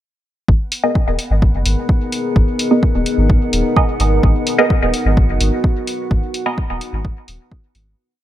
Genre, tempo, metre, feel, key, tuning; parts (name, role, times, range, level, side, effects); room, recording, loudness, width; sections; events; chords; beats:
dub techno; 128 BPM; 4/4; straight; G# minor; A4 = 440 Hz
deep dark ambient pad; sustained chords; 1.7-7.9 s; B3 to A#4; -23 LUFS; equal; chorus, built-in reverb, vintage 12-bit sampler grit, sidechain pumping
soft dub sub bass; bass; 0.5-7.9 s; D#1 to G#1; -17 LUFS; equal; sidechain pumping
electronic kick drum; drums; 0.5-7.6 s; -15 LUFS; equal
drifting glass-harmonics texture; texture; 1.1-8.0 s; B3; -25 LUFS; left 2 dB; chorus, built-in reverb, sidechain pumping
electronic hi-hat; drums; 0.7-7.8 s; -23 LUFS; left 1 dB
filtered dub chord stab; stabs; 0.8-7.5 s; B3 to D#5; -19 LUFS; right 2 dB; phaser, vintage 12-bit sampler grit, sidechain pumping, dub echo
little or no reverb; -14 LUFS; side -12 dB against mid
0.5-8.0 groove
fade-out 5.5-8.0
0.5 G#madd9
| 0.48 0.95 1.42 1.89 | 2.36 2.83 3.30 3.77 | 4.23 4.70 5.17 5.64 | 6.11 6.58 7.05 7.51